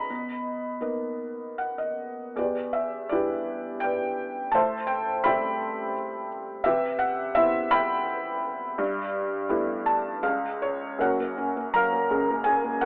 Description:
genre	classical, lyrical solo piano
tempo	74-86 BPM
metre	3/4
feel	rubato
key	unclear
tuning	A4 = 442 Hz
part	felt-muted upright piano	solo	0.0-12.9 s	F#1 to B5	-27 LUFS	equal	none
room	light reverb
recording	telephone sound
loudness	-27 LUFS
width	mono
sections	0.0-2.4 A section; 2.4-11.0 B section; 11.0-12.9 C section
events	felt piano fill 1.2-2.4, 9.5-11.0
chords	0.1 Bmaj7; 2.4 Em7; 4.5 Am9; 6.7 Cmaj7; 8.8 G69; 10.2 C#7; 11.0 F#maj7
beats	| 0.10 0.82 1.60 | 2.37 3.12 3.84 | 4.55 5.26 5.95 | 6.66 7.37 8.08 | 8.78 9.49 10.24 | 11.01 11.75 12.46

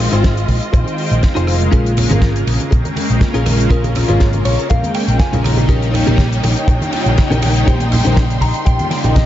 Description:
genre	nu-disco, nu disco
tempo	121 BPM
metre	4/4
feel	swing 53% on 16ths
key	Bb dorian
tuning	A4 = 440 Hz
part	warm analog pad	accompaniment	0.0-9.3 s	Db3 to G5	-19 LUFS	equal	wide subtle chorus, sidechain pumping, diffuse ambient delay
part	warm studio string section	sustained chords	0.0-9.3 s	Db4 to C6	-24 LUFS	equal	sidechain pumping
part	hollow-body short-scale picked electric bass	bass	0.0-9.2 s	F1 to Bb1	-16 LUFS	equal	none
part	damped 70s drum kit	drums	0.0-9.3 s	hi-hat, ride cymbal, rim click, snare drum	-25 LUFS	left 1 dB	small room reverb
part	direct-recorded clean electric guitar	riff	0.1-9.3 s	Db4 to Bb5	-23 LUFS	left 3 dB	analog chorus, diffuse ambient delay
part	kick drum	drums	0.2-9.3 s	none	-14 LUFS	equal	small room reverb
part	congas	percussion	1.7-9.1 s	none	-23 LUFS	right 1 dB	none
room	light reverb, small room ambience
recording	nothing above 7.7 kHz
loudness	-12 LUFS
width	side -12 dB against mid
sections	0.0-9.3 A section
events	clean electric guitar fill 4.2-5.7, 8.2-9.3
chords	0.0 Fm7; 1.7 Bbm7; 5.7 Eb7/Bb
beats	0.24 0.74 1.23 | 1.73 2.22 2.72 3.21 | 3.71 4.21 4.70 5.20 | 5.69 6.19 6.69 7.18 | 7.68 8.17 8.67 9.16

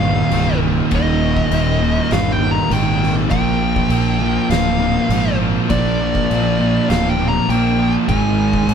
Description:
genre	stoner and doom metal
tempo	100 BPM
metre	4/4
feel	straight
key	unclear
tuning	A4 = 440 Hz
part	fuzz lead guitar	melody	0.0-8.7 s	D5 to Bb5	-22 LUFS	left 1 dB	distortion
part	distorted electric guitar	riff	0.0-8.7 s	Eb2 to Bb3	-25 LUFS	equal	overdrive
part	thick fuzz guitar	riff	0.0-8.7 s	Eb2 to Bb3	-22 LUFS	left 6 dB	distortion
part	thick fuzz guitar	riff	0.0-8.7 s	Eb2 to Bb3	-20 LUFS	right 8 dB	distortion
part	fuzz fingered electric bass	bass	0.0-8.7 s	C1 to Bb1	-20 LUFS	left 1 dB	overdrive
part	oversized low-tuned drum kit	drums	0.3-8.7 s	crash cymbal, kick drum, snare drum	-24 LUFS	left 1 dB	none
room	light reverb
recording	band playing live in one room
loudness	-14 LUFS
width	side -7 dB against mid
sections	0.0-8.7 A section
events	none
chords	0.0 Eb; 3.3 Bb; 8.1 Ab5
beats	0.32 | 0.92 1.51 2.11 2.71 | 3.31 3.91 4.50 5.10 | 5.70 6.30 6.89 7.49 | 8.09 8.68

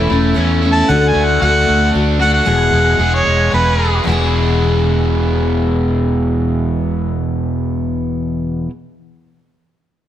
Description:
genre	folk rock and heartland rock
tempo	113 BPM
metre	3/4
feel	straight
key	E mixolydian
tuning	A4 = 440 Hz
part	picked steel-string acoustic guitar	accompaniment	0.0-8.7 s	E2 to G#4	-19 LUFS	left 3 dB	none
part	crunchy overdriven guitar	riff	0.0-8.7 s	E2 to G#4	-19 LUFS	right 1 dB	none
part	fingered electric bass	bass	0.0-8.7 s	E1 to E2	-17 LUFS	equal	none
part	mellow harmonica	melody	0.7-4.0 s	B4 to A5	-17 LUFS	equal	tape echo
room	light reverb, small room ambience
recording	none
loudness	-12 LUFS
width	side -11 dB against mid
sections	0.0-4.1 A section; 4.1-7.2 B section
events	harmonica solo 0.0-4.1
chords	0.0 A/E; 0.9 D; 2.5 E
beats	0.35 | 0.88 1.41 1.94 | 2.47 3.00 3.52 | 4.05 4.58 5.11 | 5.64 6.17 6.70

